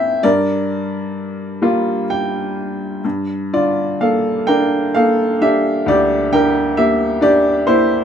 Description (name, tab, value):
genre	classical, lyrical solo piano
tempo	43 BPM (dotted quarters)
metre	6/8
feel	rubato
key	G dorian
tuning	A4 = 438 Hz
part	clear upright piano	solo	0.0-8.0 s	D2 to G5	-14 LUFS	equal	none
room	light reverb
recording	none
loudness	-14 LUFS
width	side -8 dB against mid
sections	0.0-3.0 A section; 3.0-8.0 B section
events	upright piano fill 1.6-3.0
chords	0.2 Gm7; 3.0 Gm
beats	| 0.24 1.62 | 3.04 4.48 | 5.87 7.23